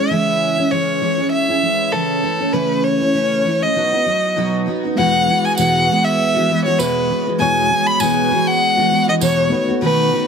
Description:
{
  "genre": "acoustic pop",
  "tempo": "99 BPM",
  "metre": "4/4",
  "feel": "swing 55% on 16ths",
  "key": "E major",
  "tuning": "A4 = 441 Hz",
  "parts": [
    { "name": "warm violin", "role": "melody", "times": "0.0-10.3 s", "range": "A4 to B5", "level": "-17 LUFS", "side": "left 1 dB", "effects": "none" },
    { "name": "picked steel-string acoustic guitar", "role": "accompaniment", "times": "0.0-10.3 s", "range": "E2 to F#4", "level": "-18 LUFS", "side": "right 1 dB", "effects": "double-tracked left and right" },
    { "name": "reed electric piano", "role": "accompaniment", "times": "5.0-10.3 s", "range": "G#3 to C#5", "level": "-25 LUFS", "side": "left 3 dB", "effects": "fast tremolo" },
    { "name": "tambourine", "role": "percussion", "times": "5.6-9.4 s", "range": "none", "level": "-28 LUFS", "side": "right 10 dB", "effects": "none" }
  ],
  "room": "light reverb, studio ambience",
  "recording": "none",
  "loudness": "-14 LUFS",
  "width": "side -6 dB against mid",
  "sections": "0.0-5.0 A section; 5.0-10.3 B section",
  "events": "none",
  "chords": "0.0 C#m; 2.2 A/C#; 3.7 B; 5.0 Eadd9; 9.5 B7"
}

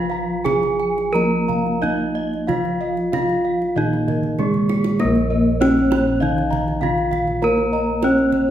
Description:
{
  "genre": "Javanese gamelan",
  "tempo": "85-99 BPM",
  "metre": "4/4",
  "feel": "straight",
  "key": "Bb slendro",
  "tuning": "A4 = 440 Hz",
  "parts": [
    { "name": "gamelan-type bronze metallophone", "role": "melody", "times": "0.0-8.5 s", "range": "Ab3-25c to Bb4", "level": "-20 LUFS", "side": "right 1 dB", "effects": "none" },
    { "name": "gamelan-type bronze metallophone", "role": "accompaniment", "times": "0.0-8.5 s", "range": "Eb3 to Bb3", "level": "-26 LUFS", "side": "left 1 dB", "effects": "none" },
    { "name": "gamelan-type bossed gongs", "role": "arpeggios", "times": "0.0-8.4 s", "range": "Ab4-25c to Bb5", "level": "-28 LUFS", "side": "left 5 dB", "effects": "none" },
    { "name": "gamelan-type bronze metallophone", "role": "arpeggios", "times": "0.0-8.5 s", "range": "Ab4-25c to Bb5", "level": "-27 LUFS", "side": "right 4 dB", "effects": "none" },
    { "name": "gamelan-type bossed gongs", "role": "bass", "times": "0.0-8.5 s", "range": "Bb1 to Bb4", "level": "-25 LUFS", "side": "equal", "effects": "none" },
    { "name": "kendang", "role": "percussion", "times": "0.5-8.5 s", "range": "none", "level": "-29 LUFS", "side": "right 4 dB", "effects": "none" }
  ],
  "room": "wet recital hall reverb, RT60 1.3 s",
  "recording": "recorded in a church or concert hall",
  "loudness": "-17 LUFS",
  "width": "side -11 dB against mid",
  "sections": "0.0-5.0 A section; 5.0-8.5 B section",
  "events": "drum fill 4.2-5.0",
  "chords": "none"
}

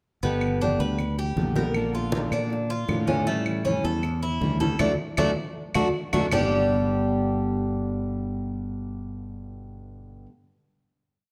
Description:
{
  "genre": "latin, Cuban son and guajira",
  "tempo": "158 BPM",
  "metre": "4/4",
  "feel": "straight",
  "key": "G major",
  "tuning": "A4 = 436 Hz",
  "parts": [
    { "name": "nylon-string guitar", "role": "accompaniment", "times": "0.2-10.3 s", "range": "G2 to G4", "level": "-32 LUFS", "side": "equal", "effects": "none" },
    { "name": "Cuban tres", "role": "arpeggios", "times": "0.2-10.3 s", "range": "G3 to B4", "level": "-30 LUFS", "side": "equal", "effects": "none" },
    { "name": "sustaining fretless electric bass", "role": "bass", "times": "0.2-10.3 s", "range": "G1 to Bb2", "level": "-31 LUFS", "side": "equal", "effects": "none" },
    { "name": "congas", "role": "percussion", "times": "0.2-6.4 s", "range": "none", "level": "-33 LUFS", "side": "equal", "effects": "none" },
    { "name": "claves", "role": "percussion", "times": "0.4-6.4 s", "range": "none", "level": "-38 LUFS", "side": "equal", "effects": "none" }
  ],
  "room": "wet large studio reverb, RT60 1.5 s",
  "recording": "none",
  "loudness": "-25 LUFS",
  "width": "mono",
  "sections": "0.2-6.3 verse; 6.3-9.4 final chord",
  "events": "band accent 4.8-6.3",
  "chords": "0.2 G; 1.8 Bb; 3.3 A7; 4.8 D; 6.3 G"
}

